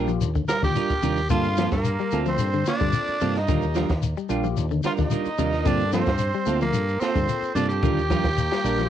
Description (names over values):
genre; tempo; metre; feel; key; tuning
afrobeat; 110 BPM; 4/4; straight; G minor; A4 = 440 Hz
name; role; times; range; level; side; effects
overdriven tine electric piano; accompaniment; 0.0-8.9 s; Bb3 to A4; -33 LUFS; left 13 dB; phaser, cassette tape
clean electric guitar; stabs; 0.0-8.8 s; G3 to Bb4; -27 LUFS; right 10 dB; cassette tape
fingered electric bass; bass; 0.0-8.9 s; Bb1 to G2; -26 LUFS; equal; none
semi-hollow electric guitar; arpeggios; 0.1-8.9 s; C3 to G3; -29 LUFS; left 8 dB; cassette tape
shekere; percussion; 0.1-8.9 s; none; -31 LUFS; left 6 dB; none
compact cocktail drum kit; drums; 0.2-8.9 s; hi-hat, kick drum, snare drum; -28 LUFS; equal; cassette tape
raspy tenor saxophone; melody; 0.5-8.9 s; Bb3 to Bb4; -27 LUFS; equal; cassette tape, analog delay
bright trumpet; second line; 0.5-8.9 s; Bb4 to Bb5; -32 LUFS; right 12 dB; cassette tape
clear trombone section; second line; 8.4-8.9 s; Bb3 to C4; -35 LUFS; left 13 dB; cassette tape
room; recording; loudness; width
little or no reverb; home recording on cassette; -21 LUFS; side -10 dB against mid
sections
0.0-8.9 A section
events
none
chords
0.0 Ebmaj9; 1.3 Gm11; 3.5 Ebmaj9; 5.7 Gm11; 7.8 Ebmaj9